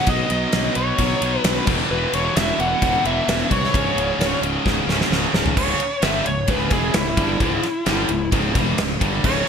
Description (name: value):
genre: hard rock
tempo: 131 BPM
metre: 4/4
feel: straight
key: C# minor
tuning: A4 = 441 Hz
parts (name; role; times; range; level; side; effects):
- smooth overdriven lead guitar; melody; 0.0-9.5 s; E4 to F#5; -24 LUFS; equal; ping-pong delay
- heavy high-gain guitar; riff; 0.0-9.5 s; C#2 to B3; -26 LUFS; equal; distortion
- tight distorted guitar; riff; 0.0-9.5 s; C#2 to B3; -25 LUFS; equal; distortion
- fuzz fingered electric bass; bass; 0.1-9.5 s; C#1 to B#1; -26 LUFS; equal; overdrive
- gated 80s drum kit; drums; 0.1-9.3 s; crash cymbal, kick drum, ride cymbal, snare drum, toms; -22 LUFS; equal; gated reverb
room: moderate plate reverb, RT60 1.1 s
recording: bright 1980s-style digital production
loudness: -17 LUFS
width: side -7 dB against mid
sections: 0.0-5.6 A section; 5.6-9.5 B section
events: drum fill 4.7-5.6; lead electric guitar solo 5.6-9.5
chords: 0.0 B; 1.7 E5; 3.7 C#5; 5.6 C#m